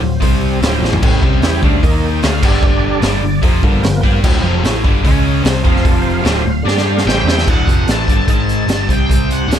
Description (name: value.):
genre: blues rock power trio and southern rock.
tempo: 149 BPM.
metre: 4/4.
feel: straight.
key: unclear.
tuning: A4 = 441 Hz.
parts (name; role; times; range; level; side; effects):
overdriven tonewheel organ; sustained chords; 0.0-9.6 s; C3 to G5; -22 LUFS; right 4 dB; slow rotary speaker, chorus vibrato.
distorted electric guitar; riff; 0.0-9.6 s; D2 to G4; -17 LUFS; left 1 dB; distortion.
vintage muted picked electric bass; bass; 0.0-9.6 s; D1 to G2; -18 LUFS; equal; none.
raw garage drum kit; drums; 0.2-9.6 s; crash cymbal, hi-hat, kick drum, snare drum, toms; -15 LUFS; equal; none.
octave-fuzz lead guitar; melody; 7.1-9.6 s; F#5 to A5; -21 LUFS; left 1 dB; distortion.
room: light reverb.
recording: none.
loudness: -11 LUFS.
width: side -9 dB against mid.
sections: 0.0-7.5 A section; 7.5-9.6 B section.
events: tonewheel organ solo 0.0-7.5; drum fill 0.8, 6.7-7.5.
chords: 0.2 C5; 0.6 D7#9; 1.0 A7#9; 1.8 Eb5; 2.2 Dm; 2.4 G5; 3.0 G7#9; 4.2 D7#9; 5.0 C#5; 5.4 C5; 5.7 F5; 6.3 D7#9; 6.7 G5; 7.1 A7#9; 7.5 D7#9; 8.3 G#5; 8.7 D5; 8.9 C5.